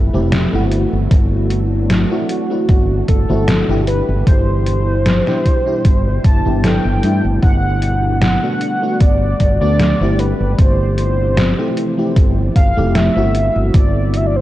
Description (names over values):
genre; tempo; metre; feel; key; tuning
vaporwave; 76 BPM; 4/4; swing 53% on 16ths; G major; A4 = 439 Hz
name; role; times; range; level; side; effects
FM electric piano with soft pad layer; accompaniment; 0.0-14.4 s; B2 to A4; -20 LUFS; equal; ensemble chorus, tape echo
soft string machine; sustained chords; 0.0-14.4 s; B2 to B4; -26 LUFS; equal; ensemble chorus
fretless electric bass; bass; 0.0-14.4 s; F1 to G2; -16 LUFS; equal; none
detuned 8-bit digital drum machine; drums; 0.3-14.3 s; hi-hat, snare drum; -18 LUFS; equal; overdrive, vintage 12-bit sampler grit, gated reverb
electronic kick drum; drums; 1.1-13.9 s; none; -13 LUFS; equal; overdrive, vintage 12-bit sampler grit
warm velvety synth lead; melody; 2.3-14.4 s; F#4 to A5; -21 LUFS; equal; chorus, tape echo
room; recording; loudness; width
digital ambience; cassette tape; -12 LUFS; side -15 dB against mid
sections
0.0-14.4 A section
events
none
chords
0.0 Fmaj9; 0.7 D7/G; 3.9 Cmaj7/G; 7.4 Gmaj7; 10.2 Fmaj9/G; 13.3 D7/G